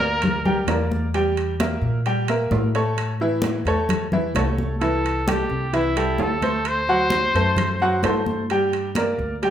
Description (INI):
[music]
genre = latin, Cuban son and guajira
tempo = 130 BPM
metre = 4/4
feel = straight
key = unclear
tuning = A4 = 440 Hz
[part]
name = clear trumpet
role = melody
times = 0.0-0.9, 4.8-8.3 s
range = E4 to C5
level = -24 LUFS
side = equal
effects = none
[part]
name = bright grand piano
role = arpeggios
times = 0.0-9.5 s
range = E3 to G5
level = -23 LUFS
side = equal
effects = none
[part]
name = upright bass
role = bass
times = 0.0-9.5 s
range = C2 to Bb2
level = -26 LUFS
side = left 1 dB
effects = none
[part]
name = congas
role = percussion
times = 0.0-9.5 s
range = none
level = -27 LUFS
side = left 1 dB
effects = none
[part]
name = timbales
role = percussion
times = 0.2-9.5 s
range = none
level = -30 LUFS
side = right 3 dB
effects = none
[sound]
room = moderate large studio reverb, RT60 0.9 s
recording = band playing live in one room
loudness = -19 LUFS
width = side -10 dB against mid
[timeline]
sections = 0.0-9.5 A section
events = none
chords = 0.0 Gm; 1.1 Edim; 3.0 A; 4.8 C6; 6.7 D7; 8.5 Gm